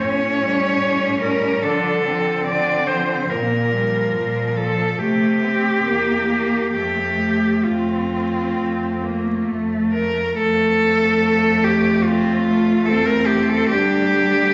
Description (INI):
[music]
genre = classical, lyrical piece for cello ensemble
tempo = 64-74 BPM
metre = 4/4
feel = rubato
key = F major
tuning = A4 = 442 Hz
[part]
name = rich cello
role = melody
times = 0.0-14.5 s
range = F4 to D5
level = -22 LUFS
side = equal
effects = none
[part]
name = rich cello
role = accompaniment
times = 0.0-14.5 s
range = F3 to D4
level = -26 LUFS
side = equal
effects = none
[part]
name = rich cello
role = bass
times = 0.0-14.5 s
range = D2 to D3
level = -30 LUFS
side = equal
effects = none
[part]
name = clear cello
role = second line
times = 0.4-14.5 s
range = F3 to D4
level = -25 LUFS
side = equal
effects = none
[sound]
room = wet recital hall reverb, RT60 1.3 s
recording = vinyl crackle, nothing above 7.8 kHz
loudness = -19 LUFS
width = mono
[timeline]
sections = 0.0-10.4 A section; 10.4-14.5 B section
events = none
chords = 0.0 A7; 1.6 Dm; 3.3 Bb5; 5.0 Am7/C; 5.9 Edim; 6.7 F; 13.7 N.C.